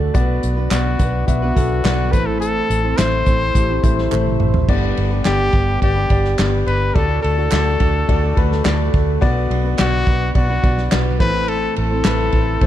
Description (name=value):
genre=piano-driven pop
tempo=106 BPM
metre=4/4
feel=straight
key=G major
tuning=A4 = 440 Hz
part: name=warm concert grand piano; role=accompaniment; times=0.0-12.7 s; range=G2 to A5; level=-23 LUFS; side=left 5 dB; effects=none
part: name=fingerpicked steel-string acoustic guitar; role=riff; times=0.0-12.7 s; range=A2 to C5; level=-26 LUFS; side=right 7 dB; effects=none
part: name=vintage muted fingered electric bass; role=bass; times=0.0-12.7 s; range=G1 to D2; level=-20 LUFS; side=equal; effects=none
part: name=unplugged drum kit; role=drums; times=0.1-12.7 s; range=crash cymbal, handclaps, hi-hat, kick drum, ride cymbal, snare drum, toms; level=-20 LUFS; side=equal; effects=none
part: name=warm trumpet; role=melody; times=0.7-12.7 s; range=F#4 to C5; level=-22 LUFS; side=left 3 dB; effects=none
part: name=group handclap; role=percussion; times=0.7-12.2 s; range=none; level=-32 LUFS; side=right 10 dB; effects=none
room=studio reverb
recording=dark, warm production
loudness=-15 LUFS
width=side -12 dB against mid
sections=0.0-4.7 A section; 4.7-12.7 A section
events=drum fill 4.1-4.7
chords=0.1 Bm; 2.1 Am; 4.7 G; 7.0 D; 9.2 Bm; 11.2 Am